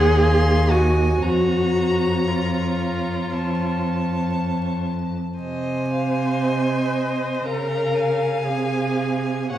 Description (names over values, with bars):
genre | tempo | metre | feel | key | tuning
classical, slow romantic movement for string quartet | 58 BPM | 4/4 | rubato | unclear | A4 = 440 Hz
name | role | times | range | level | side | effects
rich violin | melody | 0.0-9.6 s | Db5 to Gb5 | -31 LUFS | left 3 dB | none
clear violin | second line | 0.0-9.6 s | Gb5 to C6 | -30 LUFS | equal | none
rich viola | accompaniment | 0.0-9.6 s | F4 to Db5 | -23 LUFS | equal | none
rich cello | bass | 0.0-9.6 s | Eb2 to Db3 | -22 LUFS | right 1 dB | none
room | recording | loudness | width
wet recital hall reverb, RT60 1.4 s | heard from further back in the room, vinyl crackle | -19 LUFS | side -12 dB against mid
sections
0.0-9.6 A section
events
none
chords
0.0 Ab7/Eb; 1.2 Bbm/F; 3.3 F; 5.4 Ab/C; 7.5 Db